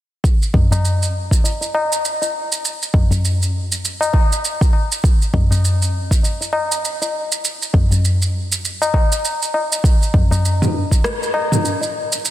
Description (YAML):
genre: downtempo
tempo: 100 BPM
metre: 4/4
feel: swing 58% on 16ths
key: none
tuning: none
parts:
  - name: deep house drum kit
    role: drums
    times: 0.2-12.3 s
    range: rim click, shaker, toms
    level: -22 LUFS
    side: right 2 dB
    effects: overdrive
  - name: electronic kick drum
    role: drums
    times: 0.2-11.0 s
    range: none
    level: -15 LUFS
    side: equal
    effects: overdrive
  - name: tabla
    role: percussion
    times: 0.5-11.9 s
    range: none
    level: -19 LUFS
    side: left 1 dB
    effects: none
room: light reverb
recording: dense, heavily limited modern master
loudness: -15 LUFS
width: side -13 dB against mid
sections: 0.2-9.8 A section; 9.8-12.3 B section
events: break 9.2-9.8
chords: none